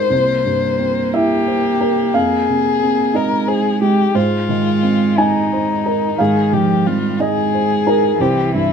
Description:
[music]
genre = neoclassical piano and strings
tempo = 59 BPM (dotted quarters)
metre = 6/8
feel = rubato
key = F minor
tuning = A4 = 441 Hz
[part]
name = dark violin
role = melody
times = 0.0-8.7 s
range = Eb4 to C5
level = -18 LUFS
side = left 8 dB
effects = none
[part]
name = warm cello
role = second line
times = 0.0-8.7 s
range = Eb3 to Bb3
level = -21 LUFS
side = right 5 dB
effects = none
[part]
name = felt-muted upright piano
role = accompaniment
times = 0.0-8.7 s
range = C2 to Ab5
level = -17 LUFS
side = right 2 dB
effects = none
[sound]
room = moderate studio reverb, RT60 0.8 s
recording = minimal, uncompressed stereo recording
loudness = -14 LUFS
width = side -6 dB against mid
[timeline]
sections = 0.0-8.7 A section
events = none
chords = 0.1 C7; 2.1 Fm7; 4.1 Abadd9; 6.2 Fm7/Ab; 8.2 C

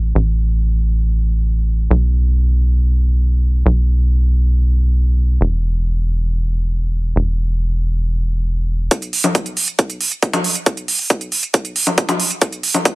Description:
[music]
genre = uplifting trance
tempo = 137 BPM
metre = 4/4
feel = straight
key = unclear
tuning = A4 = 440 Hz
[part]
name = tight sequencer bass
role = bass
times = 0.0-8.9 s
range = E1 to B1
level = -14 LUFS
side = equal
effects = sidechain pumping
[part]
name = electronic hi-hat and congas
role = drums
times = 8.9-12.9 s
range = none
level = -17 LUFS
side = right 1 dB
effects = high-pass filter on hats, high-pass filter on perc
[part]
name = electronic kick drum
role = drums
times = 8.9-12.9 s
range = none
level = -17 LUFS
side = equal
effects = high-pass filter on kick
[sound]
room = little or no reverb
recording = none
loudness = -15 LUFS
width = side -22 dB against mid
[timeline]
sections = 0.0-8.9 A section; 8.9-12.9 B section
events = build-up 8.9-12.9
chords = none

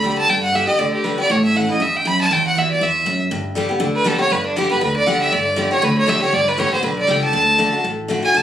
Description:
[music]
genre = bluegrass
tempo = 238 BPM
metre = 4/4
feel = swing 56% on 8ths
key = unclear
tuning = A4 = 436 Hz
[part]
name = bright fiddle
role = melody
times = 0.0-8.4 s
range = D4 to B5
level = -17 LUFS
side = right 1 dB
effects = none
[part]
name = picked steel-string acoustic guitar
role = accompaniment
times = 0.0-8.4 s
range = E2 to G4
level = -21 LUFS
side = left 1 dB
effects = none
[part]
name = upright bass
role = bass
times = 0.0-8.4 s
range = G1 to A2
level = -24 LUFS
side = right 1 dB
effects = none
[sound]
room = moderate studio ambience, RT60 0.5 s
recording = recorded on a phone in the room, studio ambience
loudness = -15 LUFS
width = side -10 dB against mid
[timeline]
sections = 0.0-3.3 A section; 3.3-8.4 B section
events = none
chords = 0.0 G; 1.3 A; 2.3 Emadd9; 3.3 G; 7.3 D

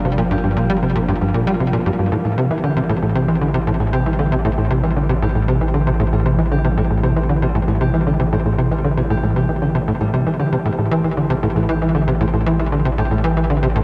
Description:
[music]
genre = ambient, sequencer-driven space music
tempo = 116 BPM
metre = 4/4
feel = straight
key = unclear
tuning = A4 = 440 Hz
[part]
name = concert harp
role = arpeggios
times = 0.0-13.8 s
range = E3 to G4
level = -24 LUFS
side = equal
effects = delay
[part]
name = warm sub bass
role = bass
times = 0.0-13.8 s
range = G1 to A1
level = -26 LUFS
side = equal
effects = none
[part]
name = tight sequencer bass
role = riff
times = 0.1-13.8 s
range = G2 to G3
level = -20 LUFS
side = equal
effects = lush chorus, delay
[sound]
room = moderate huge ambient reverb, RT60 9.3 s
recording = dark, warm production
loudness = -18 LUFS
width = mono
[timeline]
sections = 0.0-13.8 A section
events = none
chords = 0.0 Gm7; 2.1 Am7

